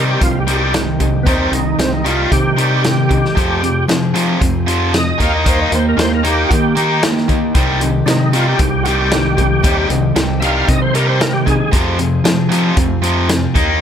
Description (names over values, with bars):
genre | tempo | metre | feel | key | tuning
classic rock | 115 BPM | 4/4 | straight | C minor | A4 = 439 Hz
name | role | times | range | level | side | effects
overdriven tonewheel organ | melody | 0.0-11.7 s | B3 to F5 | -20 LUFS | right 1 dB | slow rotary speaker, chorus vibrato, tape echo
picked acoustic archtop guitar | accompaniment | 0.0-13.8 s | C3 to Ab4 | -27 LUFS | left 5 dB | none
distorted electric guitar | riff | 0.0-13.8 s | F2 to Eb4 | -20 LUFS | left 10 dB | overdrive
tight distorted guitar | riff | 0.0-13.8 s | F2 to Eb4 | -19 LUFS | right 9 dB | distortion
growling fingered electric bass | bass | 0.0-13.8 s | C2 to F3 | -18 LUFS | equal | overdrive
vintage drum kit | drums | 0.2-13.7 s | hi-hat, kick drum, snare drum | -18 LUFS | equal | none
room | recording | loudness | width
light reverb | none | -12 LUFS | side -8 dB against mid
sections
0.0-13.8 A section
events
tonewheel organ solo 0.0-13.8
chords
0.0 Cm; 3.4 Fm; 5.2 Eb; 7.6 Cm; 11.7 Fm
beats
0.22 0.75 | 1.27 1.79 2.32 2.84 | 3.37 3.89 4.42 4.94 | 5.46 5.99 6.51 7.03 | 7.55 8.08 8.60 9.12 | 9.64 10.17 10.69 11.21 | 11.73 12.25 12.78 13.30